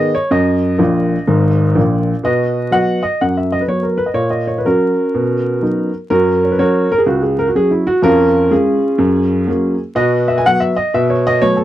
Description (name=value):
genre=jazz, stride piano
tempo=124 BPM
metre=4/4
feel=swing 65% on 8ths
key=B major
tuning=A4 = 435 Hz
part: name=warm upright piano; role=solo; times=0.0-11.6 s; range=G#1 to G#5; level=-12 LUFS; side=equal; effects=none
room=moderate booth ambience, RT60 0.2 s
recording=dry, close 1970s-style studio recording, vinyl crackle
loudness=-12 LUFS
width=side -13 dB against mid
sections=0.0-2.2 A section; 2.2-11.6 B section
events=upright piano fill 0.8-2.2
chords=0.3 D#m; 1.3 G#sus2; 2.2 B; 4.2 F#/A#; 5.1 B; 6.1 F#; 8.0 C#/E#; 9.0 F#; 10.0 B5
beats=| 0.32 0.80 1.28 1.76 | 2.24 2.72 3.21 3.69 | 4.17 4.65 5.13 5.62 | 6.10 6.58 7.06 7.54 | 8.03 8.51 8.99 9.48 | 9.96 10.44 10.93 11.41